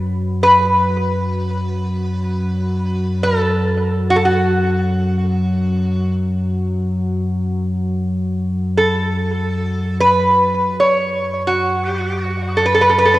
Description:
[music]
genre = world meditative, free-time meditation music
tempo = free time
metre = none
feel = none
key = F# minor pentatonic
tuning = A4 = 440 Hz
[part]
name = lap resonator guitar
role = melody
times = 0.0-13.2 s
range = F#4 to C#5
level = -15 LUFS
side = right 1 dB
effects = cassette tape, tape echo
[part]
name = deep rumbling drone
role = drone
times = 0.0-13.2 s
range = F#2 to F#3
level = -19 LUFS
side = left 1 dB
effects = built-in reverb, cassette tape
[sound]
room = wet lush hall reverb, RT60 2.5 s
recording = home recording on cassette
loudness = -15 LUFS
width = side -17 dB against mid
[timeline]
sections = 0.0-13.2 A section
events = none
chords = none

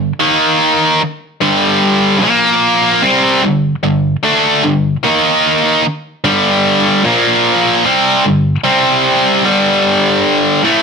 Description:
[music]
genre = rock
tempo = 50 BPM (dotted quarters)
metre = 6/8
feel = straight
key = G minor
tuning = A4 = 442 Hz
[part]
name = tight distorted guitar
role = solo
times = 0.0-10.8 s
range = G2 to Eb4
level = -10 LUFS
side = equal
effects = distortion
[sound]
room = moderate large studio reverb, RT60 0.9 s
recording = none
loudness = -10 LUFS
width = side -5 dB against mid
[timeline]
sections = 0.0-10.8 A section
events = none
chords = 0.2 Eb5; 1.0 G5; 2.2 Bb5; 3.0 G5; 5.0 Eb5; 5.8 G5; 7.0 Bb5; 7.8 G5; 8.6 C5; 9.4 G5

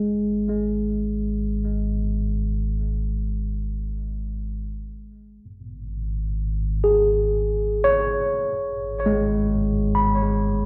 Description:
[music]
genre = ambient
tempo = free time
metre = none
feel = none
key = unclear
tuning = A4 = 440 Hz
[part]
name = tine electric piano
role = arpeggios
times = 0.0-10.7 s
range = G#3 to B5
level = -25 LUFS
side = equal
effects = overdrive, delay
[part]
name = round analog bass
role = bass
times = 0.0-10.7 s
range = G#1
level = -28 LUFS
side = equal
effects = none
[sound]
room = wet concert hall reverb, RT60 1.9 s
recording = worn, warbling old tape, cassette tape, warbly pitch drift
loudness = -24 LUFS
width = mono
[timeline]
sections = 0.0-10.7 A section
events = none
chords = 0.0 N.C.; 5.4 C#5/G#; 8.5 Bsus2/G#

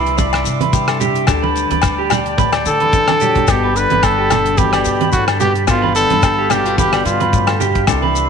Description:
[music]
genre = highlife guitar band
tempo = 109 BPM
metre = 4/4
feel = swing 55% on 16ths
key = G major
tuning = A4 = 440 Hz
[part]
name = flamenco guitar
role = accompaniment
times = 0.0-8.3 s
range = G2 to G4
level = -24 LUFS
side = left 11 dB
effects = none
[part]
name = tonewheel organ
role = sustained chords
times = 0.0-8.3 s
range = D5 to D6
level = -25 LUFS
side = equal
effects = slow rotary speaker
[part]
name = electric guitar through a small old amp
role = arpeggios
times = 0.0-8.3 s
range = G4 to D5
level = -20 LUFS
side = right 9 dB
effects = tape echo
[part]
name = upright bass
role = bass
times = 0.0-8.3 s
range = G1 to D3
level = -22 LUFS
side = equal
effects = none
[part]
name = damped 70s drum kit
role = drums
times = 0.1-8.3 s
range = hi-hat, kick drum, rim click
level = -20 LUFS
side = equal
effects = none
[part]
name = congas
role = percussion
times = 0.2-8.1 s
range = none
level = -24 LUFS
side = right 10 dB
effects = none
[part]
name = shekere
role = percussion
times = 0.2-8.3 s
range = none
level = -24 LUFS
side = left 7 dB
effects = none
[part]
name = agogo bells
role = percussion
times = 0.3-8.0 s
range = none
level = -23 LUFS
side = left 14 dB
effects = none
[part]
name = clear trumpet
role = melody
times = 2.7-7.6 s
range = F4 to B4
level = -17 LUFS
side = right 1 dB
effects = tape echo
[part]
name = mellow trombone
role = second line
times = 2.7-7.6 s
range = A2 to D3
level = -24 LUFS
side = left 12 dB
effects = none
[sound]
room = moderate echo chamber reverb, RT60 2.5 s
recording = 1960s-style stereo with parts hard left and right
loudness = -12 LUFS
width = side -6 dB against mid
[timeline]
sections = 0.0-8.3 A section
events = drum fill 2.8-3.5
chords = 0.0 Cadd9; 1.3 Dsus4; 3.5 Gadd9; 5.7 G7

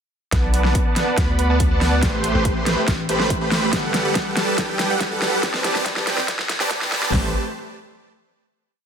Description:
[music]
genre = future bass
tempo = 141 BPM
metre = 4/4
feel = half-time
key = A dorian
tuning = A4 = 440 Hz
[part]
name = supersaw chords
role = riff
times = 0.3-7.3 s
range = G3 to C6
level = -21 LUFS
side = right 1 dB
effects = sidechain pumping, low-pass filter, digital delay
[part]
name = long sustained 808-style bass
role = bass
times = 0.3-7.3 s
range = G1 to D2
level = -24 LUFS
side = equal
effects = sidechain pumping
[part]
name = big-room dance drum kit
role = drums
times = 0.3-7.2 s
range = hi-hat, kick drum, snare drum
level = -23 LUFS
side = equal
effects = overdrive, small room ambience
[part]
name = big-room dance drum kit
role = drums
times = 0.3-7.1 s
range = hi-hat, snare drum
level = -23 LUFS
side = equal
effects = overdrive, small room ambience
[sound]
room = moderate digital room reverb, RT60 1.1 s, digital ambience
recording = dense, heavily limited modern master, high-pass filter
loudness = -18 LUFS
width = side -7 dB against mid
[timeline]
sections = 0.3-7.1 build; 7.1-8.8 final chord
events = build-up 0.3-7.1; drum fill 0.3-7.1; filter sweep on supersaw synth 0.3-7.1; filter sweep 0.3-7.1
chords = 0.3 Bm7; 2.0 Am9; 3.7 Gmaj9; 5.4 Csus2; 7.1 Am9

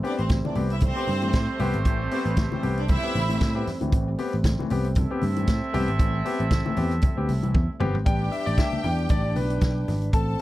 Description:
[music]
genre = disco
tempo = 116 BPM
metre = 4/4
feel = swing 56% on 16ths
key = A minor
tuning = A4 = 441 Hz
[part]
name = warm concert grand piano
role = accompaniment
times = 0.0-10.4 s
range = A2 to G5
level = -30 LUFS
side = left 5 dB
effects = none
[part]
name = mellow French horn section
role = sustained chords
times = 0.0-10.4 s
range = D3 to D4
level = -34 LUFS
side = right 3 dB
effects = none
[part]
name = vintage drum kit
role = drums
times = 0.0-10.4 s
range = hi-hat, kick drum, snare drum, toms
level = -24 LUFS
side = equal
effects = none
[part]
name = clear symphonic string section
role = second line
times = 0.1-3.6, 8.1-10.4 s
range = B3 to A5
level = -32 LUFS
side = right 2 dB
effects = none
[part]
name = congas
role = percussion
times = 0.1-10.3 s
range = none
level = -33 LUFS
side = left 2 dB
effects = none
[part]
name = picked electric bass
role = bass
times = 0.2-10.3 s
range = G1 to A2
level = -26 LUFS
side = equal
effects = none
[part]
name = warm horn section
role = stabs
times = 0.8-7.8 s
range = A3 to E5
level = -32 LUFS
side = right 3 dB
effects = none
[sound]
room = little or no reverb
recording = dry, close 1970s-style studio recording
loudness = -22 LUFS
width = side -16 dB against mid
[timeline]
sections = 0.0-8.1 A section; 8.1-10.4 B section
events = drum fill 7.5-8.1; grand piano solo 8.1-10.4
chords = 0.0 Am7; 8.1 Em7/A

